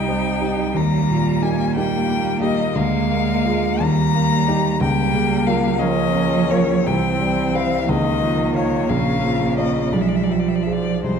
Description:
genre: classical, slow romantic movement for piano quartet.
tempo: 53-62 BPM (dotted quarters).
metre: 6/8.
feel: rubato.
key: unclear.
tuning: A4 = 440 Hz.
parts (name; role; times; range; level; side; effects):
rich violin; melody; 0.0-11.2 s; C5 to Bb5; -24 LUFS; left 9 dB; none.
rich cello; second line; 0.0-11.2 s; Db3 to Ab3; -22 LUFS; right 6 dB; none.
warm grand piano; accompaniment; 0.0-11.2 s; Bb1 to F5; -21 LUFS; left 1 dB; none.
warm viola; accompaniment; 0.0-11.2 s; F3 to Eb4; -25 LUFS; right 2 dB; none.
room: wet scoring stage reverb, RT60 1.7 s.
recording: dark, warm production.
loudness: -17 LUFS.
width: side -7 dB against mid.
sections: 0.0-11.2 A section.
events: none.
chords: 0.0 Cm; 0.8 Eb; 2.7 Bb7/D; 3.8 Eb; 4.8 Bbm/Db; 6.9 C; 7.9 Db; 8.9 Bbm; 9.9 G13b9/B.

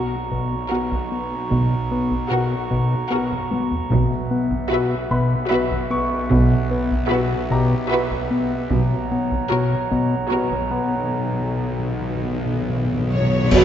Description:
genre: cinematic, suspense film score.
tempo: 75 BPM.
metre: 3/4.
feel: straight.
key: unclear.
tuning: A4 = 440 Hz.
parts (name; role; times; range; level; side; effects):
rich studio violin section; melody; 0.0-13.6 s; C#5 to F#5; -30 LUFS; left 2 dB; none.
rich studio violin section; second line; 0.0-13.6 s; A#4 to C#5; -30 LUFS; left 1 dB; none.
rich studio viola section; accompaniment; 0.0-13.6 s; F#3 to F#4; -27 LUFS; equal; none.
glass harmonica; sustained chords; 0.0-13.6 s; F#4 to C#6; -28 LUFS; right 4 dB; none.
fat analog bass; riff; 0.0-13.6 s; B2 to B3; -22 LUFS; left 2 dB; none.
bowed-like drone; drone; 0.0-13.6 s; B1; -28 LUFS; left 1 dB; built-in reverb.
clear grand piano; texture; 0.0-13.5 s; D4 to C#6; -30 LUFS; left 1 dB; none.
taiko ensemble; drums; 0.3-13.6 s; none; -30 LUFS; right 1 dB; none.
dark studio cello section; bass; 1.5-9.4, 13.5-13.6 s; B2; -25 LUFS; right 3 dB; none.
rich studio double bass section; bass; 1.5-9.4, 13.5-13.6 s; B1; -26 LUFS; right 4 dB; none.
timpani; percussion; 8.7-13.5 s; B2; -25 LUFS; equal; none.
cymbal swell, clash cymbals and concert bass drum; percussion; 11.1-13.6 s; none; -24 LUFS; equal; none.
bright trombone section; sustained chords; 13.5-13.6 s; B2 to F#3; -12 LUFS; right 4 dB; none.
dark French horn section; sustained chords; 13.5-13.6 s; C#3 to F#4; -20 LUFS; left 2 dB; none.
room: wet concert hall reverb, RT60 2.3 s.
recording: nothing above 7.8 kHz.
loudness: -19 LUFS.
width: side -10 dB against mid.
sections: 0.0-13.5 A section.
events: drum fill 3.3-3.9, 12.9-13.5; timpani fill 8.7-13.5.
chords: 0.0 F#/B; 3.9 Emadd9/B; 8.7 F#/B.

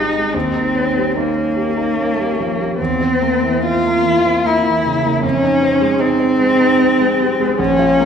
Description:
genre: classical, romantic duo for cello and grand piano.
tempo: 75 BPM.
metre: 3/4.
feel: rubato.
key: unclear.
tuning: A4 = 435 Hz.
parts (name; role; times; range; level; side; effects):
warm cello; melody; 0.0-8.1 s; Bb3 to F4; -15 LUFS; left 2 dB; none.
warm concert grand piano; accompaniment; 0.0-8.1 s; Ab1 to F4; -18 LUFS; right 2 dB; none.
room: wet scoring stage reverb, RT60 1.9 s.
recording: none.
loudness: -13 LUFS.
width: side -7 dB against mid.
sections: 0.0-8.1 A section.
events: none.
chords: 0.3 Eb7; 2.8 C7/E; 5.2 Fm7.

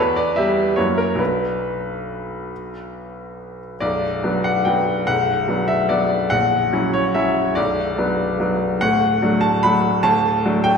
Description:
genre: classical, piano waltz.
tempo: 134-157 BPM.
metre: 3/4.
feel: rubato.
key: B minor.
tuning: A4 = 440 Hz.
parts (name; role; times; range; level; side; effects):
bright baby grand piano; solo; 0.0-10.8 s; A#0 to B5; -17 LUFS; equal; none.
room: wet recital hall reverb, RT60 1.6 s.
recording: none.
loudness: -17 LUFS.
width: side -6 dB against mid.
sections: 0.0-3.8 A section; 3.8-10.8 B section.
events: none.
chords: 0.0 Em; 0.8 F#7; 1.2 Bm; 6.3 F#7/A#; 7.6 Bm; 8.8 D.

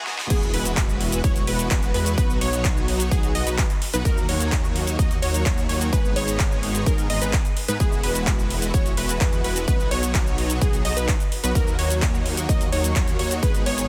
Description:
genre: EDM, festival progressive house.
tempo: 128 BPM.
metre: 4/4.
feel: straight.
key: unclear.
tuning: A4 = 439 Hz.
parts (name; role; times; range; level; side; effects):
supersaw chords; riff; 0.0-13.9 s; F#3 to D#5; -30 LUFS; equal; ensemble chorus, sidechain pumping, dub echo.
riser, swell and impact; sound effects; 0.0-2.2 s; none; -40 LUFS; equal; none.
big-room dance drum kit; drums; 0.1-13.9 s; crash cymbal, handclaps, hi-hat, shaker, snare drum; -31 LUFS; equal; none.
unison pluck; arpeggios; 0.3-13.9 s; G#4 to D#5; -32 LUFS; equal; sidechain pumping, dub echo.
detuned saw bass; bass; 0.3-13.9 s; E1 to G#2; -29 LUFS; equal; chorus, sidechain pumping.
electronic kick drum; drums; 0.3-13.5 s; none; -24 LUFS; equal; none.
room: light reverb.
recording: dense, heavily limited modern master, high-pass filter.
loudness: -22 LUFS.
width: mono.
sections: 0.3-13.9 A section.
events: break 0.0-0.3; drum fill 0.1; drop 0.3-13.9; impact 0.3-2.2.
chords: 0.3 Eadd9; 2.2 B; 4.1 D#m; 5.9 G#m; 7.8 Eadd9; 9.7 B; 11.6 D#m.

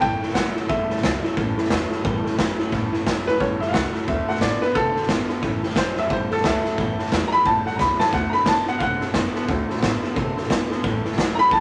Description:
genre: rockabilly.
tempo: 177 BPM.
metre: 4/4.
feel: swing 61% on 8ths.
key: A mixolydian.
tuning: A4 = 441 Hz.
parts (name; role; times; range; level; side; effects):
bright upright piano; melody; 0.0-11.6 s; E4 to B5; -24 LUFS; equal; none.
picked steel-string acoustic guitar; accompaniment; 0.0-11.6 s; A2 to A4; -32 LUFS; equal; none.
electric guitar through a small old amp; riff; 0.0-11.6 s; A2 to C4; -30 LUFS; equal; none.
upright bass; bass; 0.0-11.6 s; G#1 to C3; -35 LUFS; equal; none.
raw garage drum kit; drums; 0.0-11.6 s; hi-hat, kick drum, snare drum; -26 LUFS; equal; none.
room: wet studio reverb, RT60 0.5 s.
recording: none.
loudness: -22 LUFS.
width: mono.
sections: 0.0-2.7 A section; 2.7-11.6 B section.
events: upright piano solo 2.7-11.6; drum fill 7.8-8.1.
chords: 0.0 A7; 4.1 D7; 5.4 A7; 8.1 D7; 10.8 A7.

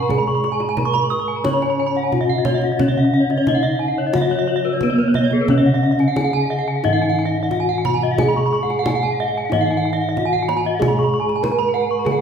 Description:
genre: Balinese gamelan.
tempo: 89 BPM.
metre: 4/4.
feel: straight.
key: Db slendro.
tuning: A4 = 440 Hz.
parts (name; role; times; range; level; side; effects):
gamelan-type bronze metallophone; melody; 0.0-12.2 s; Cb4-45c to Db5; -21 LUFS; left 1 dB; none.
gamelan-type bronze metallophone; accompaniment; 0.0-12.2 s; Db3 to Db4; -27 LUFS; right 1 dB; none.
gamelan-type bronze metallophone; arpeggios; 0.0-12.1 s; Ab4+25c to Db6; -24 LUFS; left 4 dB; none.
gamelan-type bossed gongs; bass; 0.0-12.2 s; Ab2+25c to Ab4+25c; -25 LUFS; right 1 dB; none.
kendang; percussion; 0.1-12.2 s; none; -24 LUFS; right 2 dB; none.
gamelan-type bronze metallophone; arpeggios; 0.2-12.2 s; Cb5-45c to Eb6+30c; -23 LUFS; right 5 dB; none.
room: wet recital hall reverb, RT60 1.6 s.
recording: heard from further back in the room.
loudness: -16 LUFS.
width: side -7 dB against mid.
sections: 0.0-12.2 A section.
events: none.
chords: none.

